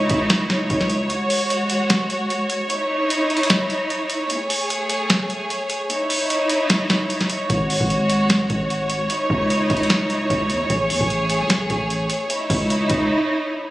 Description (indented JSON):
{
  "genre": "hip hop, trap",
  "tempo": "150 BPM",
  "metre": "4/4",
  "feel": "half-time",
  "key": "C# minor",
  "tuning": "A4 = 439 Hz",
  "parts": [
    { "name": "warm studio string section", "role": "sustained chords", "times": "0.0-13.7 s", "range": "G#3 to C#5", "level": "-20 LUFS", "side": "equal", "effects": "none" },
    { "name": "hard-hitting 808-style bass", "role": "bass", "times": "0.0-1.1, 7.5-13.1 s", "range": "G#1 to E2", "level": "-24 LUFS", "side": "equal", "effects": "none" },
    { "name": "booming analog drum machine", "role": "drums", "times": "0.1-13.1 s", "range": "hi-hat, kick drum, snare drum", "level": "-22 LUFS", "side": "equal", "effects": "vintage 12-bit sampler grit" }
  ],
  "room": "moderate recital hall reverb, RT60 1.4 s, digital ambience",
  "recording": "recorded on a phone in the room, studio reverb, compression",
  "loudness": "-18 LUFS",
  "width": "side -16 dB against mid",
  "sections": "0.0-13.7 A section",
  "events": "kick muted 1.1-7.5; break 13.1-13.7",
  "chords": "0.0 C#madd9; 1.1 G#7sus4; 2.7 C#madd9; 4.3 Amaj7; 5.9 C#madd9; 7.5 G#7sus4; 9.1 C#madd9; 10.7 Amaj7; 12.3 C#madd9"
}